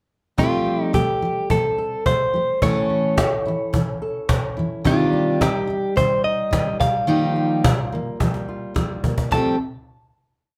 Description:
acoustic pop; 107 BPM; 4/4; straight; F mixolydian; A4 = 440 Hz
direct-recorded clean electric guitar; melody; 0.4-9.6 s; F4 to A5; -24 LUFS; equal; plate reverb
picked steel-string acoustic guitar; accompaniment; 0.4-9.6 s; A2 to A4; -25 LUFS; equal
flamenco guitar; arpeggios; 0.4-9.6 s; G3 to A4; -32 LUFS; equal
cajon; drums; 0.4-9.5 s; -26 LUFS; equal
moderate studio ambience, RT60 0.5 s; -21 LUFS; mono
0.4-9.3 verse; 9.3-10.6 final chord
drum fill 8.2-9.3
0.4 Fadd9; 2.6 A; 4.9 Cmadd9; 6.8 Ebadd9; 9.3 Fadd9
| 0.39 0.94 1.50 2.06 | 2.62 3.18 3.74 4.30 | 4.86 5.42 5.97 6.53 | 7.09 7.65 8.21 8.77 | 9.32

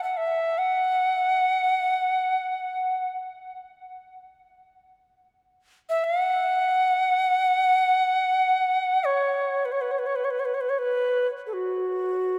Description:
world meditative, free-time meditation music; free time; A4 = 440 Hz
bright Native American-style cedar flute; solo; 0.0-12.4 s; F#4 to F#5; -24 LUFS; equal; delay
wet huge ambient reverb, RT60 4.5 s; -24 LUFS; mono
0.0-12.4 A section
free time

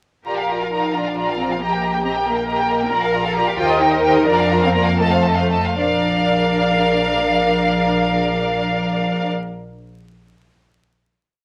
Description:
quick classical-period movement for string orchestra; 74-93 BPM (dotted quarters); 6/8; rubato; Bb major; A4 = 444 Hz
warm symphonic violin section; melody; 0.3-9.3 s; Eb5 to Bb5; -23 LUFS; equal
rich studio violin section; second line; 0.3-9.3 s; F4 to G5; -28 LUFS; equal
clear symphonic viola section; accompaniment; 0.3-9.3 s; F4 to Bb4; -25 LUFS; equal
clear symphonic cello section; bass; 0.3-9.3 s; A3 to Bb4; -26 LUFS; equal
rich symphonic double bass section; bass; 0.3-9.3 s; Bb1 to F2; -25 LUFS; equal
moderate studio reverb, RT60 0.6 s; vinyl crackle; -18 LUFS; mono
0.3-5.8 A section; 5.8-8.9 final chord
slowing down 2.3-5.8
0.3 Bb; 1.6 Eb/Bb; 2.9 Bb; 3.6 Cm/Eb; 4.3 Bb/F; 5.0 F7; 5.8 Bb
| 0.27 0.95 | 1.61 2.26 | 2.92 3.58 | 4.27 5.00 | 5.78 6.55 | 7.32 8.08

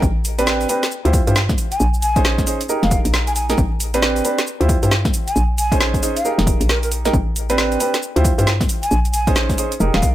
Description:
UK garage, two-step garage; 135 BPM; 4/4; swing 62% on 16ths; A4 = 442 Hz
hollow knocking FM bass; bass; 0.0-10.1 s; Eb1 to G2; -19 LUFS; equal; tube saturation, sidechain pumping
electronic kick drum; drums; 0.0-10.1 s; -19 LUFS; equal
garage drum kit; drums; 0.0-10.1 s; hi-hat, shaker, snare drum; -22 LUFS; equal; overdrive
warm baby grand piano; stabs; 0.4-10.1 s; C4 to C5; -21 LUFS; right 2 dB; ping-pong delay
breathy mellow concert flute; melody; 1.7-10.1 s; Bb4 to Ab5; -24 LUFS; left 1 dB; ping-pong delay
light reverb; -15 LUFS; side -13 dB against mid
0.0-10.1 A section
0.0 Am11; 0.9 Dm11; 1.6 Bbm11; 2.7 Fm11; 3.6 Am11; 4.5 Dm11; 5.1 Bbm11; 6.2 Fm11; 7.1 Am11; 8.0 Dm11; 8.7 Bbm11
| 0.03 0.47 0.91 1.36 | 1.80 2.25 2.69 3.14 | 3.58 4.03 4.47 4.91 | 5.36 5.80 6.25 6.69 | 7.14 7.58 8.03 8.47 | 8.91 9.36 9.80

